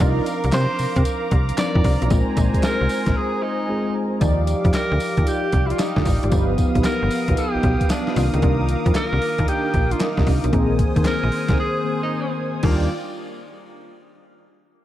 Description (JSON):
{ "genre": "R&B, new jack swing", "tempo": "114 BPM", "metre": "4/4", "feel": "swing 66% on 16ths", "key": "Eb major", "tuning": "A4 = 440 Hz", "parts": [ { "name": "tine electric piano", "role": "accompaniment", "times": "0.0-12.9 s", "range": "Eb3 to D5", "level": "-26 LUFS", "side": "left 2 dB", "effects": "medium stereo tremolo" }, { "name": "brassy analog pad", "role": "sustained chords", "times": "0.0-12.9 s", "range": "B3 to D#6", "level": "-28 LUFS", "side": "right 1 dB", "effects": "chorus" }, { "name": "mellow synth brass", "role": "stabs", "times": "0.0-12.8 s", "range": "C4 to D5", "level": "-29 LUFS", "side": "right 1 dB", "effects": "chorus, analog delay" }, { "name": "slap-like FM bass", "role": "bass", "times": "0.0-12.9 s", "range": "G1 to C3", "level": "-21 LUFS", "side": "equal", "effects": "none" }, { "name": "boom bap sampler-style drum kit", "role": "drums", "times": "0.0-12.8 s", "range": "crash cymbal, handclaps, hi-hat, kick drum, snare drum, tambourine", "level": "-22 LUFS", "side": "equal", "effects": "none" }, { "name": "breathy tenor saxophone", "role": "melody", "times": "0.5-12.9 s", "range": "Bb3 to D5", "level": "-27 LUFS", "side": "equal", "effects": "analog delay" } ], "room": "moderate plate reverb, RT60 3.1 s", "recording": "dreamy mix soaked in reverb", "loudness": "-18 LUFS", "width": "side -13 dB against mid", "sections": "0.0-4.2 A section; 4.2-12.6 B section; 12.6-14.7 C section", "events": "break 3.2-4.2, 11.6-12.6", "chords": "0.0 Cm11; 2.1 Bb9sus4; 4.2 Ebmaj9; 6.3 G7alt; 8.2 Cm11; 10.5 Bb9sus4; 12.6 Ebmaj9" }